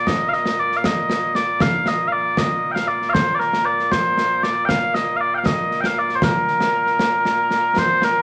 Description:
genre	scottish traditional, Scottish pipe music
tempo	78 BPM (dotted quarters)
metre	6/8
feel	straight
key	Bb major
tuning	A4 = 442 Hz
part	mellow small bagpipes	melody	0.0-8.2 s	Bb2 to G5	-20 LUFS	equal	none
part	concert snare drum and concert bass drum	drums	0.1-8.1 s	none	-26 LUFS	equal	none
room	wet studio reverb, RT60 0.6 s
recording	none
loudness	-19 LUFS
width	mono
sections	0.0-7.8 A section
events	none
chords	none

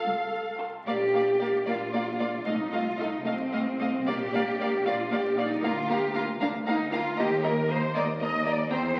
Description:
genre	quick classical-period movement for string orchestra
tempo	77 BPM (dotted quarters)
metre	6/8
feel	rubato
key	Bb major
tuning	A4 = 443 Hz
part	warm studio violin section	melody	0.0-9.0 s	F5 to Bb5	-37 LUFS	equal	none
part	dark studio viola section	accompaniment	0.0-9.0 s	A3 to A4	-36 LUFS	equal	none
part	rich studio cello section	bass	0.0-9.0 s	C2 to Eb5	-30 LUFS	equal	none
part	rich studio violin section	second line	0.6-9.0 s	F4 to G5	-37 LUFS	equal	none
part	warm studio double bass section	bass	0.9-9.0 s	Bb1 to E2	-37 LUFS	equal	none
room	wet scoring stage reverb, RT60 1.8 s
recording	very old 78 rpm record, vinyl crackle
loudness	-28 LUFS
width	mono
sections	0.9-9.0 A section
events	none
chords	0.0 F; 0.9 Bb; 2.5 F7/C; 4.1 Bb; 5.6 Bb/D; 7.2 Eb

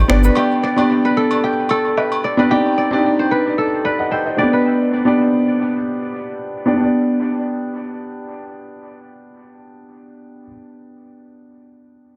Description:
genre	afrobeats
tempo	112 BPM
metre	4/4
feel	swing 55% on 16ths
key	G major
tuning	A4 = 440 Hz
part	warm concert grand piano	accompaniment	0.0-12.2 s	A3 to G5	-19 LUFS	equal	low-pass filter, dub echo
part	kora	riff	0.0-5.8 s	G4 to D5	-22 LUFS	equal	low-pass filter, dub echo
part	agogo bells and woodblock	percussion	0.4-2.2 s	none	-29 LUFS	equal	dub echo
room	moderate echo chamber reverb, RT60 1.2 s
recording	echo-heavy mix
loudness	-17 LUFS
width	mono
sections	0.0-6.8 A section; 6.8-11.1 B section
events	filter sweep 0.0-6.8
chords	0.1 G; 2.5 Cmadd9; 4.4 G

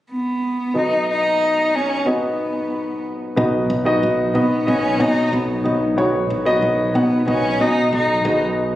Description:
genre	piano-driven pop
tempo	92 BPM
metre	4/4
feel	straight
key	B major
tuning	A4 = 440 Hz
part	warm cello	melody	0.1-8.4 s	B3 to D#4	-20 LUFS	equal	none
part	dark upright piano	accompaniment	0.7-8.8 s	B1 to F#5	-19 LUFS	equal	none
part	fingered electric bass	bass	3.4-8.8 s	B1 to B2	-23 LUFS	right 1 dB	none
room	moderate concert hall reverb, RT60 2.5 s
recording	recorded on a phone in the room, studio reverb, compression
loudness	-16 LUFS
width	side -14 dB against mid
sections	0.8-3.4 A section; 3.4-8.8 B section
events	none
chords	0.0 N.C.; 0.8 B; 8.3 G#m/B

